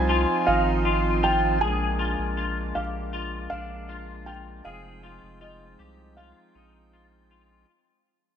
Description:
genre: dream pop.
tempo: 79 BPM.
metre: 4/4.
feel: straight.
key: F dorian.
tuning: A4 = 440 Hz.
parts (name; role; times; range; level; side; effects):
felt-muted upright piano; melody; 0.0-7.3 s; Eb5 to Ab5; -27 LUFS; right 2 dB; digital delay.
pipe organ, cornet; sustained chords; 0.0-7.7 s; F3 to G5; -30 LUFS; right 1 dB; none.
clean electric guitar; arpeggios; 0.0-7.7 s; D4 to Ab4; -30 LUFS; left 5 dB; ensemble chorus, digital delay.
saturated sub bass; bass; 0.0-7.6 s; F1 to C2; -29 LUFS; right 1 dB; none.
room: moderate lush hall reverb, RT60 2.6 s.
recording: none.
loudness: -22 LUFS.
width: side -8 dB against mid.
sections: 0.0-7.7 A section.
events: fade-out 0.0-7.7.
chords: 0.0 Fm7; 1.6 Bb7; 4.7 Fm7.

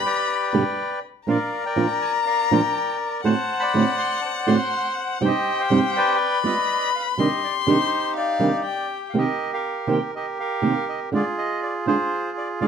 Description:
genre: tango.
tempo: 122 BPM.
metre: 4/4.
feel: rubato.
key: C minor.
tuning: A4 = 440 Hz.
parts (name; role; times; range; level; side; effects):
bandoneon; melody; 0.0-12.7 s; Eb4 to C6; -24 LUFS; equal; none.
warm violin; second line; 0.0-9.1 s; F5 to C6; -25 LUFS; left 8 dB; none.
flamenco guitar; accompaniment; 0.5-12.7 s; G2 to G4; -21 LUFS; right 4 dB; none.
room: light reverb.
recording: close, detailed microphones.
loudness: -20 LUFS.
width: side -7 dB against mid.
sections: 0.0-9.1 A section; 9.1-12.7 A section.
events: none.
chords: 0.0 G; 1.3 Bb; 3.2 D7/A; 5.2 Cm/G; 6.2 G7; 7.2 Cmadd9; 9.1 Cm7; 11.1 Ddim.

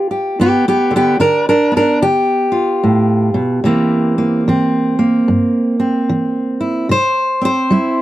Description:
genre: acoustic country blues, solo or duo.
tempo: 74 BPM.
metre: 4/4.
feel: swing 63% on 8ths.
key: unclear.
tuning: A4 = 440 Hz.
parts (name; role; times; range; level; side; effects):
fingerpicked steel-string acoustic guitar; solo; 0.0-8.0 s; G2 to C5; -12 LUFS; equal; none.
room: little or no reverb.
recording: dry, close 1970s-style studio recording.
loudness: -12 LUFS.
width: side -15 dB against mid.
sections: 0.0-8.0 A section.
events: none.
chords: 0.0 G7; 3.7 C7.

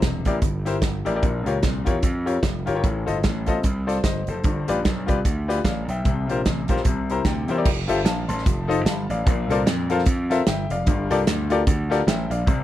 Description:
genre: uptempo gospel.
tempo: 149 BPM.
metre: 4/4.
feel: swing 59% on 8ths.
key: F major.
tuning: A4 = 442 Hz.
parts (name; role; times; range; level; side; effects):
bright baby grand piano; accompaniment; 0.0-12.6 s; G2 to C6; -24 LUFS; left 4 dB; none.
gritty slap bass; bass; 0.0-12.6 s; E1 to F2; -26 LUFS; right 1 dB; overdrive.
modern studio drum kit; drums; 0.0-12.6 s; crash cymbal, hi-hat, kick drum, snare drum; -23 LUFS; right 1 dB; none.
room: little or no reverb.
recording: none.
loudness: -20 LUFS.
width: side -13 dB against mid.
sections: 0.0-7.7 A section; 7.7-12.6 B section.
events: grand piano fill 6.9-7.7.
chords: 0.0 C7; 1.2 Bbm6; 2.8 F7; 4.4 G7; 6.1 C7sus4; 6.9 C7; 7.7 Fadd9; 8.5 F7; 9.3 Bbmaj9; 10.9 Gm9.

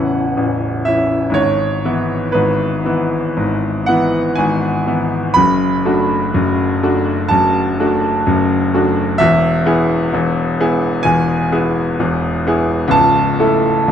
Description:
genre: classical, romantic nocturne for solo piano.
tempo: 57-66 BPM.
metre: 4/4.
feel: rubato.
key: unclear.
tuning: A4 = 440 Hz.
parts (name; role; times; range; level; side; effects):
bright grand piano; solo; 0.0-13.9 s; A0 to B5; -13 LUFS; equal; none.
room: moderate recital hall reverb, RT60 1.6 s.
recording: close, detailed microphones.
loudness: -13 LUFS.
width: side -9 dB against mid.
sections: 0.0-13.9 A section.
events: none.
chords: 0.0 A; 1.4 E/G#; 5.4 D/F#; 9.2 E; 12.9 A/C#.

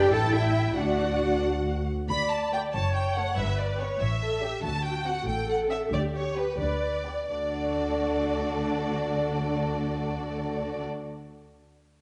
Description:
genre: quick classical-period movement for string orchestra.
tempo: 83-95 BPM (dotted quarters).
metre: 6/8.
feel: straight.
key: D major.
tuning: A4 = 441 Hz.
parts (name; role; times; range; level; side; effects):
rich studio violin section; melody; 0.0-10.8 s; B4 to B5; -34 LUFS; equal; none.
warm studio violin section; second line; 0.0-10.8 s; A3 to A5; -37 LUFS; equal; none.
dark studio viola section; accompaniment; 0.0-10.8 s; A3 to D5; -33 LUFS; equal; none.
warm studio double bass section; bass; 0.0-10.8 s; F#1 to D2; -34 LUFS; equal; none.
warm symphonic cello section; bass; 0.0-10.8 s; D2 to A4; -34 LUFS; equal; none.
room: wet scoring stage reverb, RT60 1.7 s.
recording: nothing above 10.9 kHz.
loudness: -28 LUFS.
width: mono.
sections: 0.0-2.1 A section; 2.1-7.3 B section; 7.3-10.1 C section.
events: slowing down 4.0-7.3.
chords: 0.1 A5; 0.8 D; 2.7 F#m; 3.4 G; 4.0 A7; 4.6 D7; 5.9 G/D; 7.3 D.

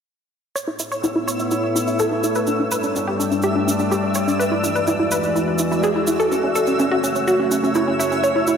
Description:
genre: progressive house.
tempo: 125 BPM.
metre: 4/4.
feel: straight.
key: A major.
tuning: A4 = 442 Hz.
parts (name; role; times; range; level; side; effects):
evolving wavetable pad; sustained chords; 1.0-8.6 s; E2 to D5; -22 LUFS; equal; chorus, built-in reverb.
analog pluck; arpeggios; 0.6-8.6 s; C#4 to C#5; -20 LUFS; equal; chorus, vintage 12-bit sampler grit, analog delay.
cabasa; percussion; 0.6-8.6 s; none; -30 LUFS; right 4 dB; none.
twinkling granular texture; texture; 0.8-8.6 s; E5 to E6; -28 LUFS; left 1 dB; built-in reverb, ensemble chorus.
electronic handclaps; drums; 1.0-7.8 s; none; -38 LUFS; equal; none.
room: wet lush hall reverb, RT60 1.7 s.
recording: dreamy mix soaked in reverb.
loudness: -17 LUFS.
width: side -7 dB against mid.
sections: 0.6-8.6 A section.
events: filter sweep on synth pluck 0.6-8.6; filter sweep on ambient pad 0.6-8.6.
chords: 0.6 Aadd9; 2.5 Gsus2; 4.4 E7; 6.3 F#m.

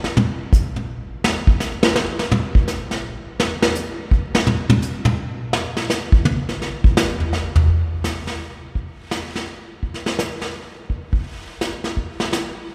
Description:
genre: jazz.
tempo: 168 BPM.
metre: 3/4.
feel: swing 64% on 8ths.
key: none.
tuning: none.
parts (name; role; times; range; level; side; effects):
vintage brush drum kit; drums; 0.0-12.7 s; brushed snare drum, hi-hat, kick drum, snare drum, toms; -21 LUFS; equal; none.
room: moderate church reverb, RT60 3.7 s.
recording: recorded in a church or concert hall.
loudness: -21 LUFS.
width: mono.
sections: 0.0-7.7 A section; 7.7-12.7 B section.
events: drum solo 0.0-7.7.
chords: none.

